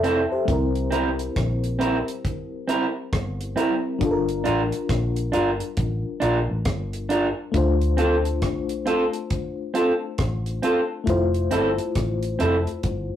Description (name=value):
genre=lovers rock reggae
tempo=68 BPM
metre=4/4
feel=swing 62% on 16ths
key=unclear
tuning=A4 = 440 Hz
part: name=FM electric piano with tremolo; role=accompaniment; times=0.0-13.2 s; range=F3 to E5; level=-27 LUFS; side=left 4 dB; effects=none
part: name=electric guitar through a small old amp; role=stabs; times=0.0-12.6 s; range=C4 to Bb4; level=-22 LUFS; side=right 2 dB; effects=none
part: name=vintage muted picked electric bass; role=bass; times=0.0-13.1 s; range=F1 to D2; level=-26 LUFS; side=equal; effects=none
part: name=deep reggae drum kit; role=drums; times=0.0-13.1 s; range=hi-hat, kick drum, rim click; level=-28 LUFS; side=equal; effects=none
room=moderate studio reverb, RT60 0.6 s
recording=rough rehearsal-room recording, warm saturation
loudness=-21 LUFS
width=side -10 dB against mid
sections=0.0-13.2 A section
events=none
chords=0.5 C7; 4.0 Gm7; 7.5 Dm7; 11.1 Fmaj7